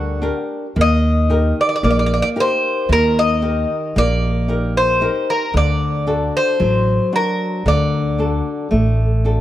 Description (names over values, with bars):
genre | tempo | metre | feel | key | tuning
greek folk, Greek bouzouki band | 113 BPM (eighths) | 9/8 | straight | unclear | A4 = 440 Hz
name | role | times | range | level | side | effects
Greek bouzouki | melody | 0.0-9.4 s | F#4 to Eb5 | -18 LUFS | equal | none
flamenco guitar | accompaniment | 0.0-9.4 s | D3 to Bb4 | -22 LUFS | left 1 dB | none
upright bass | bass | 0.0-9.4 s | A1 to Eb2 | -17 LUFS | equal | none
room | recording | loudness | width
light reverb | dark, warm production | -15 LUFS | side -13 dB against mid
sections
0.0-9.4 A section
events
none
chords
0.0 Gm; 0.8 Eb; 5.6 D